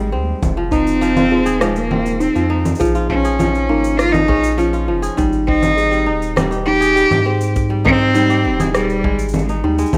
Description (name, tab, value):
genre	folktronica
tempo	101 BPM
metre	4/4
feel	straight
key	Ab major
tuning	A4 = 437 Hz
part	rich cello	melody	0.0-9.8 s	G3 to G4	-20 LUFS	equal	digital delay
part	buzzing kalimba	second line	0.0-10.0 s	Eb4 to Ab4	-23 LUFS	equal	digital delay
part	kora	arpeggios	0.0-10.0 s	F3 to Ab4	-24 LUFS	equal	none
part	warm sub bass	bass	0.0-10.0 s	Eb1 to Ab2	-24 LUFS	equal	none
part	electronic congas, shaker and rim click	drums	0.4-10.0 s	none	-24 LUFS	equal	none
part	kick drum	drums	0.4-10.0 s	none	-24 LUFS	equal	none
room	light reverb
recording	rough home demo mix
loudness	-16 LUFS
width	mono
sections	0.0-9.9 A section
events	none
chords	0.4 Fm7; 2.8 Bbm7; 5.2 Abmaj7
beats	| 0.43 1.02 1.62 2.21 | 2.80 3.40 3.99 4.59 | 5.18 5.78 6.37 6.96 | 7.56 8.15 8.74 9.34 | 9.93